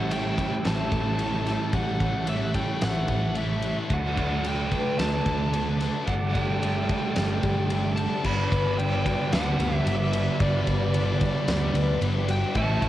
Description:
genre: rock, shoegaze and dream pop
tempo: 111 BPM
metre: 4/4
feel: straight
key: G lydian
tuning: A4 = 439 Hz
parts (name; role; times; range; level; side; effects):
- fuzz lead guitar; melody; 0.0-12.9 s; D5 to B5; -32 LUFS; left 1 dB; distortion, cassette tape, tape echo
- ensemble organ-string; sustained chords; 0.0-12.9 s; F#3 to F#6; -38 LUFS; equal; ensemble chorus, cassette tape
- picked twelve-string acoustic guitar; arpeggios; 0.0-12.9 s; E3 to A4; -35 LUFS; left 5 dB; analog chorus, cassette tape, tape echo
- distorted electric guitar; riff; 0.0-12.9 s; G2 to D4; -35 LUFS; left 1 dB; overdrive, cassette tape
- overdriven electric guitar; riff; 0.0-12.9 s; G2 to G4; -29 LUFS; right 5 dB; reverse reverb, cassette tape
- thick fuzz guitar; riff; 0.0-12.9 s; G2 to D4; -34 LUFS; left 5 dB; distortion, lush chorus, cassette tape
- vintage muted picked electric bass; bass; 0.0-12.9 s; G1 to D2; -28 LUFS; equal; transformer saturation
- huge arena drum kit; drums; 0.1-12.9 s; crash cymbal, kick drum, ride cymbal, snare drum; -31 LUFS; equal; cassette tape
room: little or no reverb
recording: home recording on cassette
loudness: -23 LUFS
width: side -13 dB against mid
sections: 0.0-8.2 A section; 8.2-12.9 B section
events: none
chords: 0.0 A7; 3.9 D6; 6.1 Gsus2; 8.2 Gmaj7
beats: 0.11 0.65 1.19 | 1.73 2.28 2.82 3.36 | 3.90 4.45 4.99 5.54 | 6.08 6.62 7.17 7.71 | 8.25 8.79 9.33 9.87 | 10.41 10.95 11.48 12.02 | 12.56

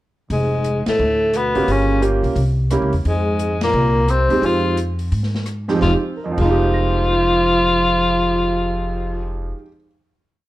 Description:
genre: jazz, small-group swing and bop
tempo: 174 BPM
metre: 4/4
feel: swing 63% on 8ths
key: F minor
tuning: A4 = 438 Hz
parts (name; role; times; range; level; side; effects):
- breathy tenor saxophone; melody; 0.3-9.4 s; Ab3 to F4; -19 LUFS; left 2 dB; plate reverb
- mellow trombone; second line; 0.3-9.3 s; Ab2 to F3; -24 LUFS; right 2 dB; none
- upright bass; bass; 0.3-9.5 s; F1 to Ab2; -21 LUFS; equal; none
- open jazz drum kit; drums; 0.3-6.4 s; crash cymbal, hi-hat, kick drum, ride cymbal, rim click, snare drum; -30 LUFS; left 1 dB; none
- clear grand piano; accompaniment; 1.5-9.9 s; F2 to Bb6; -21 LUFS; right 3 dB; none
room: moderate large studio reverb, RT60 0.9 s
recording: none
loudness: -16 LUFS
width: side -16 dB against mid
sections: 0.3-5.8 A section; 5.8-8.6 final chord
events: band accent 0.8, 3.6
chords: 0.3 Fm; 1.0 D; 1.7 Gm7b5; 2.4 C7b9; 3.1 Fm9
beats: | 0.30 0.65 0.99 1.33 | 1.68 2.02 2.36 2.71 | 3.05 3.40 3.74 4.09 | 4.43 4.78 5.12 5.47 | 5.81 6.16 6.50 6.85 | 7.19 7.54 7.89 8.23

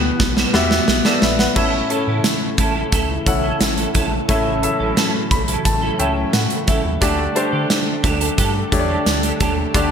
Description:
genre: 1980s-style pop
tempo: 88 BPM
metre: 4/4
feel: straight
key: unclear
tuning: A4 = 440 Hz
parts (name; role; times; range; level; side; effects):
- clear baby grand piano; accompaniment; 0.0-9.9 s; A2 to B5; -21 LUFS; left 2 dB; none
- soft string machine; sustained chords; 0.0-9.9 s; C#3 to F#5; -26 LUFS; equal; ensemble chorus
- clean electric guitar; riff; 0.0-9.9 s; G3 to A4; -25 LUFS; right 4 dB; ensemble chorus, ping-pong delay
- round analog bass; bass; 0.0-9.9 s; A1 to D3; -24 LUFS; equal; none
- gated 80s drum kit; drums; 0.2-9.9 s; crash cymbal, hi-hat, kick drum, snare drum; -19 LUFS; right 1 dB; gated reverb
room: moderate lush hall reverb, RT60 2.2 s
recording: bright 1980s-style digital production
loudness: -15 LUFS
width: side -7 dB against mid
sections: 0.0-1.6 A section; 1.6-9.9 B section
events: drum fill 0.0-1.6; grand piano fill 5.0-7.0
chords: 0.0 Emadd9; 1.6 A; 7.0 Dsus4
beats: 0.20 0.88 | 1.56 2.25 2.93 3.61 | 4.29 4.97 5.65 6.34 | 7.02 7.70 8.38 9.06 | 9.74

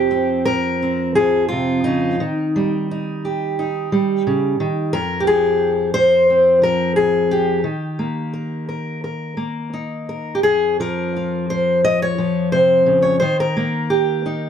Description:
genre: folk, solo fingerstyle acoustic guitar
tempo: 87 BPM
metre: 4/4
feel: rubato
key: F minor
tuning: A4 = 441 Hz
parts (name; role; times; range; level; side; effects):
- fingerpicked steel-string acoustic guitar; solo; 0.0-14.5 s; F2 to Eb5; -16 LUFS; equal; none
room: moderate studio reverb, RT60 0.6 s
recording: cassette tape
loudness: -16 LUFS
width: side -8 dB against mid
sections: 0.0-14.5 A section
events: none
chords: 0.0 Fsus2; 2.2 Eb; 4.9 Fmadd9; 7.6 Eb; 10.4 F5; 13.2 Eb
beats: 0.10 0.81 1.51 | 2.19 2.88 3.57 4.25 | 4.93 5.61 6.28 6.96 | 7.64 8.32 9.02 9.72 | 10.43 11.14 11.84 12.53 | 13.22 13.91

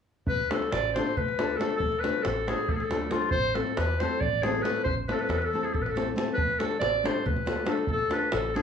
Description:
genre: balkan folk, Balkan wedding band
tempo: 276 BPM (eighths)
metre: 7/8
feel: straight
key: D dorian sharp4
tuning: A4 = 440 Hz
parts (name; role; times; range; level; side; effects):
- bright clarinet; melody; 0.3-8.6 s; F4 to D5; -28 LUFS; left 2 dB; none
- upright bass; bass; 0.3-8.6 s; A1 to E2; -34 LUFS; equal; none
- davul; percussion; 0.3-8.6 s; none; -32 LUFS; right 1 dB; none
- nylon-string guitar; accompaniment; 0.5-8.6 s; A3 to A4; -31 LUFS; left 2 dB; none
room: moderate studio reverb, RT60 0.5 s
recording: studio ambience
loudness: -25 LUFS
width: side -7 dB against mid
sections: 0.3-8.6 A section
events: none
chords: 0.3 Dm; 3.3 Am; 6.4 Dm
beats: | 0.27 0.49 0.70 0.92 1.14 1.36 1.58 | 1.80 2.01 2.23 2.45 2.67 2.89 3.10 | 3.32 3.54 3.76 3.98 4.19 4.41 4.63 | 4.85 5.06 5.28 5.50 5.72 5.93 6.15 | 6.37 6.58 6.80 7.02 7.24 7.45 7.67 | 7.88 8.10 8.32 8.53

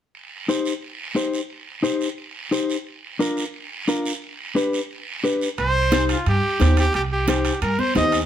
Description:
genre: latin, cumbia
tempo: 177 BPM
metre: 4/4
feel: straight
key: C minor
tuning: A4 = 441 Hz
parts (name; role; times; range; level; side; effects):
- guiro; percussion; 0.1-8.3 s; none; -31 LUFS; right 5 dB; none
- mellow electric guitar; accompaniment; 0.5-8.2 s; D4 to C5; -22 LUFS; left 3 dB; none
- bright trumpet; melody; 5.6-8.2 s; F4 to Eb5; -22 LUFS; right 1 dB; none
- upright bass; bass; 5.6-8.2 s; C2 to G2; -21 LUFS; right 1 dB; none
- congas; percussion; 5.6-8.1 s; none; -28 LUFS; left 1 dB; none
- timbales; percussion; 5.6-8.3 s; none; -31 LUFS; right 5 dB; none
room: moderate studio reverb, RT60 0.7 s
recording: band playing live in one room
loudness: -20 LUFS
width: side -10 dB against mid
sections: 0.1-5.6 A section; 5.6-8.3 B section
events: none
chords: 0.1 Cm; 2.9 Bb; 4.2 G; 5.6 Cm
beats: | 0.14 0.48 0.82 1.16 | 1.50 1.84 2.18 2.52 | 2.86 3.20 3.54 3.88 | 4.22 4.56 4.90 5.24 | 5.58 5.92 6.26 6.60 | 6.94 7.28 7.62 7.96

